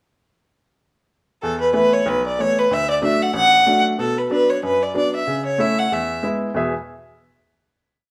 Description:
celtic folk, Celtic reel; 187 BPM; 4/4; swing 56% on 8ths; E mixolydian; A4 = 441 Hz
rich fiddle; melody; 1.4-6.2 s; A4 to F#5; -20 LUFS; equal
bright upright piano; accompaniment; 1.4-6.7 s; A1 to E5; -24 LUFS; equal
wet large studio reverb, RT60 1.0 s; band playing live in one room; -19 LUFS; mono
1.4-6.6 A section; 6.6-7.8 final chord
1.4 Esus4; 2.7 D; 4.0 Bm; 5.3 A/C#; 5.9 E

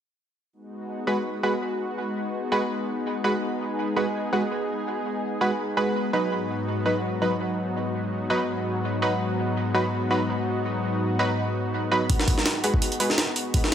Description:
drum and bass, jungle; 166 BPM; 4/4; swing 55% on 16ths; G# minor; A4 = 441 Hz
lush unison pad; sustained chords; 0.6-13.7 s; G#2 to G#4; -27 LUFS; left 1 dB; chorus, vintage 12-bit sampler grit
band-passed chord stab; stabs; 1.1-13.1 s; F#3 to B4; -26 LUFS; right 1 dB; chorus, vintage 12-bit sampler grit, dub echo
jungle sampler-style drum kit; drums; 12.1-13.7 s; hi-hat, kick drum, snare drum; -22 LUFS; equal
moderate lush hall reverb, RT60 2.0 s; -23 LUFS; side -9 dB against mid
0.5-13.7 A section
0.5 G#m7; 6.3 B/G#

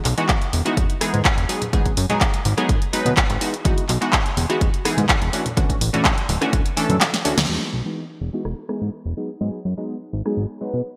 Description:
filtered disco house; 125 BPM; 4/4; straight; E major; A4 = 440 Hz
punchy analog drum machine; drums; 0.0-10.3 s; handclaps, hi-hat, rim click, snare drum; -25 LUFS; equal; sidechain pumping on hats, low-pass filter on hats, low-pass filter on snare, gated reverb
fat analog bass; bass; 0.1-10.8 s; D1 to B2; -25 LUFS; equal; sidechain pumping, low-pass filter
tube shaker and congas; percussion; 0.1-7.5 s; -34 LUFS; equal
funky polysynth comp; accompaniment; 0.2-10.8 s; E3 to B4; -27 LUFS; equal; chorus, phaser, vintage 12-bit sampler grit, sidechain pumping, low-pass filter
electronic kick drum; drums; 0.3-6.6 s; -23 LUFS; equal
moderate lush hall reverb, RT60 1.7 s; bright 1980s-style digital production; -21 LUFS; mono
0.0-7.5 A section; 7.5-11.0 B section
kick drops out 7.0-7.5; drum fill 7.0-7.5; band accent 7.4; filter sweep 7.5-11.0
0.0 Emaj9; 1.5 G#m7; 3.4 Emaj9; 5.3 Dmaj9; 7.5 Emaj9; 9.2 G#m7

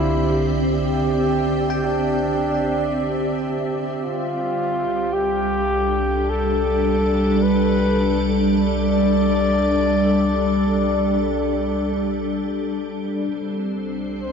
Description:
ambient; 53 BPM; 4/4; straight; C major; A4 = 440 Hz
mellow flugelhorn; melody; 0.0-14.3 s; D4 to D5; -23 LUFS; left 2 dB; ping-pong delay
soft additive organ-like pad; sustained chords; 0.0-14.3 s; G3 to E5; -20 LUFS; equal; ensemble chorus, built-in reverb
bell-like tine electric piano; arpeggios; 0.0-7.1 s; D3 to G5; -27 LUFS; right 1 dB; medium stereo tremolo, ping-pong delay
deep rumbling drone; bass; 0.0-14.3 s; C2; -28 LUFS; equal; built-in reverb
wet cathedral reverb, RT60 5.6 s; -18 LUFS; side -6 dB against mid
0.0-14.3 A section
0.0 Cadd9; 4.0 C69

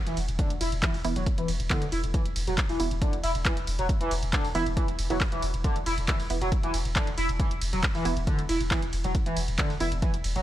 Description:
driving peak-time techno; 137 BPM; 4/4; straight; A4 = 442 Hz
overdriven synth lead; riff; 0.1-10.4 s; D3 to E4; -31 LUFS; equal; distortion, lush chorus, sidechain pumping, dub echo
saturated sub bass; bass; 0.1-10.4 s; E1; -32 LUFS; equal; overdrive, sidechain pumping, low-pass filter
punchy analog drum machine; drums; 0.1-10.4 s; handclaps, hi-hat, ride cymbal; -33 LUFS; right 1 dB
electronic kick drum; drums; 0.4-10.1 s; -28 LUFS; equal
filtered dub chord stab; stabs; 1.0-9.9 s; E3 to E4; -35 LUFS; right 5 dB; chorus, sidechain pumping, dub echo
little or no reverb; -25 LUFS; side -13 dB against mid
0.0-10.4 A section
0.0 E5

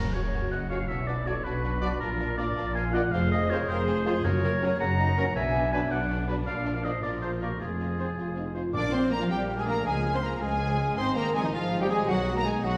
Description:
cinematic; 107 BPM (dotted quarters); 6/8; straight; A4 = 440 Hz
warm symphonic violin section; melody; 0.0-12.8 s; Gb4 to D6; -41 LUFS; equal
clear clarinet; second line; 0.0-12.8 s; Bb3 to Gb5; -40 LUFS; equal
silver concert flute; second line; 0.0-12.8 s; Ab4 to D6; -39 LUFS; equal
warm oboe; second line; 0.0-12.8 s; Ab4 to Bb5; -38 LUFS; equal
warm symphonic violin section; second line; 0.0-12.8 s; Bb3 to D5; -43 LUFS; equal
concert harp; arpeggios; 0.0-12.8 s; F2 to C6; -40 LUFS; equal
warm studio double bass section; bass; 0.0-12.8 s; F1 to Db2; -35 LUFS; equal
warm symphonic cello section; bass; 0.0-12.8 s; F2 to D4; -36 LUFS; equal
timpani; percussion; 0.0-0.3, 4.2-4.8, 8.7-9.3 s; Gb2 to Bb2; -38 LUFS; equal
mellow French horn section; sustained chords; 0.1-12.8 s; Eb3 to Gb4; -36 LUFS; equal
dark trumpet section; stabs; 0.1-12.8 s; Eb4 to D5; -39 LUFS; equal
warm symphonic viola section; accompaniment; 0.3-12.8 s; D#3 to D5; -39 LUFS; equal
wet recital hall reverb, RT60 1.4 s; recorded in a church or concert hall; -28 LUFS; mono
0.0-8.7 A section; 8.7-12.8 B section
0.0 Gb; 0.9 Cbm; 2.0 Bb; 3.1 Fm; 4.2 Gb; 5.4 Cbm; 6.5 Bb; 7.6 Fm; 8.7 Bb; 9.9 Db; 11.0 Ab; 12.1 B

